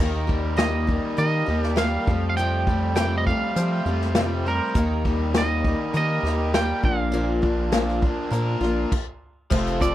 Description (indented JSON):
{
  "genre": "folk rock and heartland rock",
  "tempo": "101 BPM",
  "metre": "4/4",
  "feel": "straight",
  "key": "unclear",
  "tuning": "A4 = 440 Hz",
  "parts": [
    { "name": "twangy electric guitar", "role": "melody", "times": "0.0-9.9 s", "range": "Bb4 to G5", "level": "-28 LUFS", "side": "right 3 dB", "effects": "none" },
    { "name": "picked steel-string acoustic guitar", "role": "accompaniment", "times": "0.0-9.9 s", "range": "F2 to G4", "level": "-27 LUFS", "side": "left 2 dB", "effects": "none" },
    { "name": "raw garage guitar", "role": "riff", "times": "0.0-9.9 s", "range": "Bb2 to C5", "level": "-29 LUFS", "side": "equal", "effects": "overdrive, spring reverb" },
    { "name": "rubbery square bass", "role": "bass", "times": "0.0-9.9 s", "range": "F1 to F3", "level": "-25 LUFS", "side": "equal", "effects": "none" },
    { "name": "unplugged drum kit", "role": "drums", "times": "0.3-9.9 s", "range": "crash cymbal, hi-hat, kick drum, snare drum", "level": "-24 LUFS", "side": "equal", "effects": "none" }
  ],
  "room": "little or no reverb",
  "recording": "none",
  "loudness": "-20 LUFS",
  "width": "side -13 dB against mid",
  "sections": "0.0-9.5 A section",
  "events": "stop 8.9-9.5",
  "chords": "0.0 Eb; 2.1 Fadd9; 4.8 Eb; 6.8 Bb",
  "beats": "| 0.00 0.59 1.19 1.78 | 2.38 2.97 3.57 4.16 | 4.76 5.35 5.95 6.54 | 7.13 7.72 8.32 8.91 | 9.50"
}